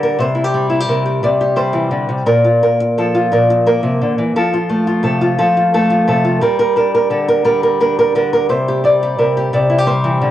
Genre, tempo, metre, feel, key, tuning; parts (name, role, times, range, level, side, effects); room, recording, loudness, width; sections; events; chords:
highlife; 116 BPM (dotted quarters); 12/8; straight; A4 = 441 Hz
nylon-string guitar; solo; 0.0-10.3 s; Bb2 to D5; -12 LUFS; equal; cassette tape
moderate spring reverb, RT60 2.9 s; home recording on cassette; -12 LUFS; side -12 dB against mid
0.0-10.3 A section
0.2 C; 2.3 Bb5; 4.3 F; 6.4 Gm; 8.5 C